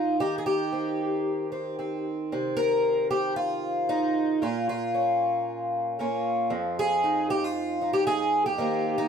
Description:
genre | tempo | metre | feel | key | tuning
folk, solo fingerstyle acoustic guitar | 115 BPM | 4/4 | straight | F minor | A4 = 440 Hz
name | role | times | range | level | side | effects
fingerpicked twelve-string acoustic guitar | solo | 0.0-9.1 s | F2 to Bb4 | -24 LUFS | equal | none
room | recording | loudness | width
moderate studio reverb, RT60 0.6 s | none | -24 LUFS | side -7 dB against mid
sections
0.0-9.1 A section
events
none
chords
0.2 Eb6; 2.3 Cm7; 4.4 Bbm; 6.5 Fm7

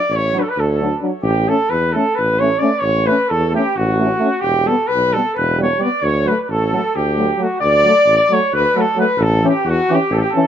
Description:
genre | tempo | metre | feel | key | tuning
balkan folk | 264 BPM (eighths) | 7/8 | straight | D major | A4 = 441 Hz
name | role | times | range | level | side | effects
clear flugelhorn | melody | 0.0-10.5 s | F#4 to D5 | -17 LUFS | left 1 dB | plate reverb, tape echo
mellow trumpet | second line | 0.0-10.5 s | F#4 to D5 | -22 LUFS | right 4 dB | none
clear tuba | bass | 0.1-10.2 s | E1 to E2 | -19 LUFS | equal | none
warm French horn | accompaniment | 0.3-10.4 s | A3 to D4 | -21 LUFS | left 5 dB | none
warm euphonium | accompaniment | 0.3-10.4 s | E3 to A3 | -22 LUFS | right 5 dB | none
room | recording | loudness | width
moderate small room reverb, RT60 0.5 s | close, detailed microphones | -14 LUFS | side -9 dB against mid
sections
0.0-7.6 A section; 7.6-10.5 B section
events
none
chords
0.0 D; 1.2 A; 4.4 Em; 6.0 D; 9.2 A

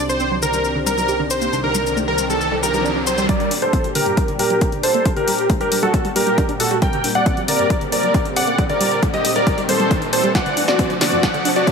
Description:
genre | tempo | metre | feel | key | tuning
uplifting trance | 136 BPM | 4/4 | straight | G harmonic minor | A4 = 441 Hz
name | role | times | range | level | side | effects
wide unison pluck | arpeggios | 0.0-11.7 s | F#2 to G4 | -26 LUFS | right 2 dB | sidechain pumping, dub echo
solid FM bass | bass | 0.0-3.3 s | C2 | -29 LUFS | equal | sidechain pumping
riser | sound effects | 1.0-11.7 s | none | -28 LUFS | equal | none
dense compressed supersaw | melody | 0.1-11.7 s | F#4 to G5 | -20 LUFS | equal | sidechain pumping, low-pass filter, ping-pong delay
cabasa | percussion | 0.1-3.3 s | none | -26 LUFS | left 6 dB | none
clear grand piano | second line | 3.3-11.7 s | A4 to G5 | -24 LUFS | equal | vintage 12-bit sampler grit, sidechain pumping, low-pass filter, dub echo
electronic kick drum | drums | 3.3-11.7 s | none | -20 LUFS | equal | overdrive, studio ambience
punchy analog drum machine | drums | 3.3-11.7 s | hi-hat, snare drum | -24 LUFS | left 3 dB | overdrive, high-pass filter on hats, studio ambience, high-pass filter on snare
room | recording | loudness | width
light reverb, digital ambience | high-pass filter | -16 LUFS | side -5 dB against mid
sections
0.0-3.3 A section; 3.3-11.7 B section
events
riser 1.0-3.3, 3.3-11.7; build-up 3.3-11.7; filter sweep on supersaw synth 3.3-11.7; filter sweep on synth arpeggio sound 3.3-11.7; drum fill 10.3-11.7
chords
0.0 Cmadd9; 3.3 Gm; 10.3 D7

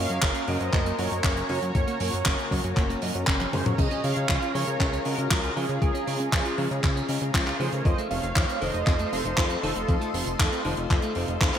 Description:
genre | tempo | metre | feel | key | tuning
italo disco | 118 BPM | 4/4 | straight | Db major | A4 = 436 Hz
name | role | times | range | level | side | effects
mellow synth brass | melody | 0.0-11.1 s | F4 to F5 | -31 LUFS | right 1 dB | chorus, cassette tape, digital delay
lush unison pad | sustained chords | 0.0-11.6 s | Db4 to C6 | -34 LUFS | equal | chorus, phaser
clean electric guitar | arpeggios | 0.0-11.6 s | Bb2 to F4 | -34 LUFS | right 2 dB | ping-pong delay
warm grand piano | stabs | 0.0-11.6 s | Ab3 to Eb5 | -35 LUFS | left 3 dB | vintage 12-bit sampler grit
fat analog bass | bass | 0.0-11.5 s | F1 to Db3 | -31 LUFS | equal | none
tight funk drum kit | drums | 0.1-11.6 s | crash cymbal, handclaps, hi-hat, toms | -29 LUFS | equal | gated reverb
electronic kick drum | drums | 0.2-11.5 s | none | -25 LUFS | equal | overdrive
room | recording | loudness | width
moderate plate reverb, RT60 2.3 s | bright 1980s-style digital production | -23 LUFS | side -9 dB against mid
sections
0.0-11.6 A section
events
drum fill 3.4-3.8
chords
0.0 Gb; 3.8 Db; 7.9 F7

